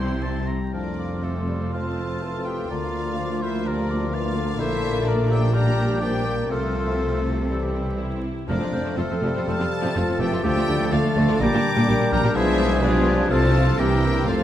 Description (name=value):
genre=classical, dramatic, fast romantic movement for symphony orchestra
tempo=124 BPM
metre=4/4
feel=rubato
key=F major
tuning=A4 = 440 Hz
part: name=rich symphonic violin section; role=melody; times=0.0-14.4 s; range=A3 to C6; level=-36 LUFS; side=left 4 dB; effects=none
part: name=clear oboe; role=second line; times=0.0-14.4 s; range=A4 to Bb5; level=-34 LUFS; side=right 1 dB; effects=none
part: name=clear studio violin section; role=second line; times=0.0-14.4 s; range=C5 to D6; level=-34 LUFS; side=left 2 dB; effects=none
part: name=mellow hollow silver concert flute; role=second line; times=0.0-14.4 s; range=C5 to Bb6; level=-35 LUFS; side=left 2 dB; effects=none
part: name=clear symphonic viola section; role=accompaniment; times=0.0-14.4 s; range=F3 to F4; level=-32 LUFS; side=right 1 dB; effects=none
part: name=concert harp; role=arpeggios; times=0.0-14.4 s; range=F2 to A5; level=-30 LUFS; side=left 7 dB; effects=none
part: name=warm trumpet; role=stabs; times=0.0-14.4 s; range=C4 to Bb4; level=-33 LUFS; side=right 1 dB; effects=none
part: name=clear studio double bass section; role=bass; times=0.0-14.4 s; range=F1 to D2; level=-26 LUFS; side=right 1 dB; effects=none
part: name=rich symphonic cello section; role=bass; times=0.0-14.4 s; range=D2 to C3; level=-27 LUFS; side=right 1 dB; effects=none
part: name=warm clarinet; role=second line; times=0.7-14.4 s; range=C4 to D5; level=-33 LUFS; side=left 2 dB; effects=none
part: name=mellow bassoon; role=accompaniment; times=0.7-14.4 s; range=D3 to C4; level=-32 LUFS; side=equal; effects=none
part: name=bright trombone section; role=sustained chords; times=0.7-14.4 s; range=E3 to D4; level=-33 LUFS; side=right 2 dB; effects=none
part: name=dark French horn section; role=sustained chords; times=0.7-14.4 s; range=F4 to Bb4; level=-31 LUFS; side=left 4 dB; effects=none
room=moderate scoring stage reverb, RT60 1.8 s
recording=vinyl crackle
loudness=-20 LUFS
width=side -11 dB against mid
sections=0.7-14.4 A section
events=none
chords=0.0 C; 0.7 F; 2.7 Bb/D; 4.6 Bb; 5.6 Gm/Bb; 6.5 F/C; 7.5 C; 8.5 F; 10.5 Dm; 11.4 Gm/Bb; 12.4 Bdim7; 13.3 F/C; 13.8 C7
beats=0.23 | 0.74 1.24 1.74 2.23 | 2.71 3.19 3.66 4.13 | 4.61 5.08 5.55 6.03 | 6.52 7.02 7.51 8.01 | 8.50 8.99 9.49 9.98 | 10.46 10.93 11.43 11.90 | 12.37 12.84 13.31 13.80 | 14.30